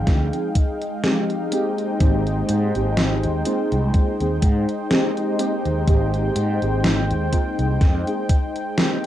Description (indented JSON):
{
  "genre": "vaporwave",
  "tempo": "62 BPM",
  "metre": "4/4",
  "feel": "swing 54% on 16ths",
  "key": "unclear",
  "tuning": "A4 = 440 Hz",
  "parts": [
    { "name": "warbly lo-fi synth keys", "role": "accompaniment", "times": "0.0-9.1 s", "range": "F3 to Ab4", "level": "-26 LUFS", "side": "right 1 dB", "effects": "wide subtle chorus, tape echo" },
    { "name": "lush unison pad", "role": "sustained chords", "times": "0.0-9.1 s", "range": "Ab3 to G5", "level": "-24 LUFS", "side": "left 1 dB", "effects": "chorus" },
    { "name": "fretless electric bass", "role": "bass", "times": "0.0-8.0 s", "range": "Ab1 to Ab2", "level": "-22 LUFS", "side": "equal", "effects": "none" },
    { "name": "electronic kick drum", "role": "drums", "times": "0.1-8.5 s", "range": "none", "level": "-18 LUFS", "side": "equal", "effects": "none" },
    { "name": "gated 80s digital drum machine", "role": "drums", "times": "0.1-9.1 s", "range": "hi-hat, snare drum", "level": "-23 LUFS", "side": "left 1 dB", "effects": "gated reverb, gated reverb snare" }
  ],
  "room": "moderate studio reverb, RT60 0.5 s",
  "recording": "rough home demo mix, faint mains hum",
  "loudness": "-18 LUFS",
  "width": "side -12 dB against mid",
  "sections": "0.0-9.1 A section",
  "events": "none",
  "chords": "0.0 Fm9; 1.5 Abmaj7",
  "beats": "0.07 1.04 | 2.00 2.97 3.94 4.91 | 5.88 6.84 7.81 8.78"
}